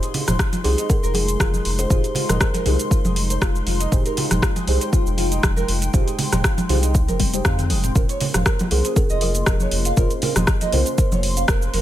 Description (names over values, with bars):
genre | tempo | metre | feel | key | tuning
afro house | 119 BPM | 4/4 | swing 54% on 16ths | F minor | A4 = 440 Hz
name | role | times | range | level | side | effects
dark analog pad | sustained chords | 0.0-11.8 s | Ab3 to C6 | -30 LUFS | left 1 dB | chorus, sidechain pumping
nylon-string guitar | arpeggios | 0.0-11.8 s | C4 to F5 | -29 LUFS | right 2 dB | sidechain pumping, tape echo
deep mellow chord stab | stabs | 0.0-11.8 s | Db4 to C5 | -30 LUFS | right 1 dB | chorus, phaser, sidechain pumping, tape echo
afro-pop drum kit | drums | 0.0-11.8 s | hi-hat, rim click, shaker, toms | -24 LUFS | equal | none
congas | percussion | 0.1-11.8 s | none | -27 LUFS | right 2 dB | none
round analog bass | bass | 0.3-11.8 s | F1 to F2 | -22 LUFS | equal | sidechain pumping
electronic kick drum | drums | 0.4-11.6 s | none | -20 LUFS | equal | none
kalimba | melody | 0.6-2.7, 8.7-11.1 s | Ab4 to Eb5 | -28 LUFS | equal | tape echo
room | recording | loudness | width
little or no reverb | none | -17 LUFS | side -13 dB against mid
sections
0.0-11.8 A section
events
drum fill 7.2-8.0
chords
0.0 Fm7; 8.0 Bbmadd9/F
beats
0.39 0.90 1.40 | 1.91 2.41 2.91 3.42 | 3.92 4.43 4.93 5.43 | 5.94 6.44 6.95 7.45 | 7.96 8.46 8.96 9.47 | 9.97 10.48 10.98 11.49